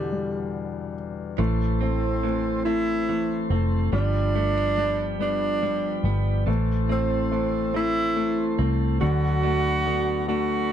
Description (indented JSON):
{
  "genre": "six-eight pop ballad",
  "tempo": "47 BPM (dotted quarters)",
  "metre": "6/8",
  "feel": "straight",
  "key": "A minor",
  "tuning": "A4 = 444 Hz",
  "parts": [
    { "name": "breathy tenor saxophone", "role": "melody", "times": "0.0-10.7 s", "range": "G3 to F#4", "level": "-26 LUFS", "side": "right 2 dB", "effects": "none" },
    { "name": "warm concert grand piano", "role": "accompaniment", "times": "0.0-10.7 s", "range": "E2 to A3", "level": "-28 LUFS", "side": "left 8 dB", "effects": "none" },
    { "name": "mellow tonewheel organ", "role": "sustained chords", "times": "1.4-10.7 s", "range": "E4 to C6", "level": "-34 LUFS", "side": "right 1 dB", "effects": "slow rotary speaker" },
    { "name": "direct-recorded clean electric guitar", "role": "arpeggios", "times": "1.4-10.7 s", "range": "E3 to D4", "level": "-32 LUFS", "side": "right 16 dB", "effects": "none" },
    { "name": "vintage muted fingered electric bass", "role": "bass", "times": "1.4-10.7 s", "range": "F1 to D2", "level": "-26 LUFS", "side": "equal", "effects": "none" }
  ],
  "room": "little or no reverb",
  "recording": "dry, close 1970s-style studio recording",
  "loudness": "-22 LUFS",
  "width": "side -9 dB against mid",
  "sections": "0.0-1.4 A section; 1.4-10.7 B section",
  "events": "none",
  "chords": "0.0 Em7; 1.4 Am; 3.9 G7; 6.5 Am; 9.0 D6",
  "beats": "0.11 | 1.39 2.66 | 3.93 5.20 | 6.47 7.75 | 9.02 10.29"
}